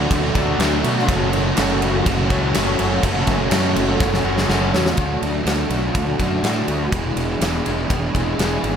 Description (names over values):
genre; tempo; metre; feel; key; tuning
rock, shoegaze and dream pop; 123 BPM; 4/4; straight; unclear; A4 = 441 Hz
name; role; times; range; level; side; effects
fingerpicked twelve-string acoustic guitar; arpeggios; 0.0-8.8 s; E3 to G#4; -29 LUFS; right 4 dB; analog chorus, analog delay
crunchy overdriven guitar; riff; 0.0-8.8 s; E2 to F#4; -24 LUFS; left 10 dB; ensemble chorus
overdriven electric guitar; riff; 0.0-8.8 s; D3 to G#4; -24 LUFS; right 10 dB; reverse reverb
sludgy distorted guitar; riff; 0.0-5.0 s; F#2 to D4; -24 LUFS; equal; overdrive
fuzz fingered electric bass; bass; 0.0-8.8 s; E1 to B2; -23 LUFS; equal; overdrive
big rock drum kit; drums; 0.1-8.7 s; crash cymbal, kick drum, ride cymbal, snare drum; -22 LUFS; equal; none
room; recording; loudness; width
light reverb, studio reverb; none; -17 LUFS; side -8 dB against mid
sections
0.0-5.0 A section; 5.0-8.8 A section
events
drum fill 4.0-5.0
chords
0.0 Dadd9; 1.1 F#m; 5.0 D; 6.9 E7